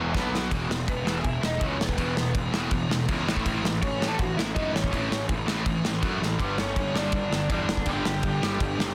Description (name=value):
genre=punk rock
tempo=163 BPM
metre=4/4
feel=straight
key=unclear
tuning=A4 = 441 Hz
part: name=overdriven semi-hollow guitar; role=riff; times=0.0-0.5, 6.4-8.9 s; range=E2 to B3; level=-35 LUFS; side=equal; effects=none
part: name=sludgy distorted guitar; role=riff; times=0.0-8.9 s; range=E2 to B3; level=-32 LUFS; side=equal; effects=overdrive
part: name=fuzz picked electric bass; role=bass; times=0.0-8.9 s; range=E1 to F#2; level=-34 LUFS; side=equal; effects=overdrive
part: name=loose indie drum kit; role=drums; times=0.1-8.9 s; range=crash cymbal, kick drum, snare drum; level=-31 LUFS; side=equal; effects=none
part: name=lead guitar through a small cranked amp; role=melody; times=0.9-8.9 s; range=B3 to A5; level=-34 LUFS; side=equal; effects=overdrive
room=light reverb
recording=dense, heavily limited modern master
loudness=-26 LUFS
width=mono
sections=0.5-8.9 A section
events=drum fill 0.0-0.5, 6.2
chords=0.1 B5; 0.5 E5; 3.3 A; 6.4 G5